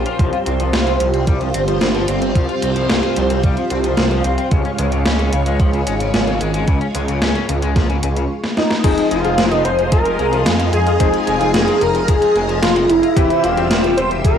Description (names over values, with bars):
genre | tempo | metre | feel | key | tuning
synthwave | 111 BPM | 4/4 | straight | F minor | A4 = 442 Hz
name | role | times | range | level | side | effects
string machine, full ensemble | sustained chords | 0.0-14.4 s | G3 to E6 | -21 LUFS | right 2 dB | phaser, ensemble chorus, sidechain pumping, cassette tape, plate reverb
electric guitar at the edge of break-up | riff | 0.0-14.3 s | C3 to F4 | -26 LUFS | left 9 dB | analog chorus, cassette tape, analog delay
wide detuned saw bass | bass | 0.0-14.4 s | E1 to F2 | -20 LUFS | right 1 dB | chorus
gated 80s digital drum machine | drums | 0.1-14.4 s | crash cymbal, hi-hat, snare drum | -20 LUFS | equal | gated reverb, gated reverb snare, overdrive, cassette tape
electronic kick drum | drums | 0.2-14.4 s | none | -16 LUFS | right 1 dB | overdrive, cassette tape
wide unison lead | melody | 8.6-14.4 s | Eb4 to C5 | -17 LUFS | right 1 dB | ensemble chorus, cassette tape, tape echo, plate reverb
warm electric grand piano | stabs | 8.8-14.4 s | E3 to E5 | -22 LUFS | left 8 dB | cassette tape, plate reverb
FM electric piano with soft pad layer | second line | 9.1-14.4 s | E4 to C5 | -25 LUFS | left 1 dB | none
room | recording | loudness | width
wet booth ambience, RT60 0.2 s | home recording on cassette | -14 LUFS | side -8 dB against mid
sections
0.0-8.8 A section; 8.8-14.4 B section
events
drum fill 8.4-8.8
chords
0.2 Fsus2; 4.5 Db; 8.8 Fm7; 13.2 C/E